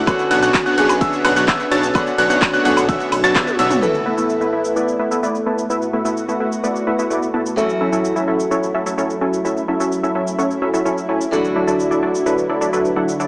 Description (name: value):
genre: EDM, festival progressive house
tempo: 128 BPM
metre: 4/4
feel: straight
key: A major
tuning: A4 = 440 Hz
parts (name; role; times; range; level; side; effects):
- picked old ladder-braced acoustic guitar; accompaniment; 0.0-13.3 s; D3 to A4; -22 LUFS; equal; sidechain pumping, tape echo
- lush unison pad; sustained chords; 0.0-13.3 s; D2 to F#4; -24 LUFS; equal; chorus, sidechain pumping
- wide detuned saw bass; bass; 0.0-3.8 s; B1; -25 LUFS; equal; chorus, sidechain pumping
- clear concert grand piano; arpeggios; 0.1-3.8 s; E6 to A6; -20 LUFS; equal; sidechain pumping, low-pass filter, tape echo
- supersaw stab; riff; 0.1-13.3 s; F#3 to A5; -18 LUFS; equal; sidechain pumping, low-pass filter, tape echo
- big-room dance drum kit; drums; 0.1-13.3 s; cabasa, handclaps, hi-hat, ride cymbal, toms, woodblock; -23 LUFS; equal; overdrive
- electronic kick drum; drums; 0.1-3.4 s; none; -20 LUFS; equal; none
room: wet recital hall reverb, RT60 1.5 s, digital ambience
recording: small speaker sound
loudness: -15 LUFS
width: side -25 dB against mid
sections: 0.0-3.8 A section; 3.8-13.3 B section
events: drop 0.0-3.8; drum fill 3.4-3.8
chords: 0.1 Bmadd9; 3.8 Asus2; 7.6 F#m7; 11.3 Dadd9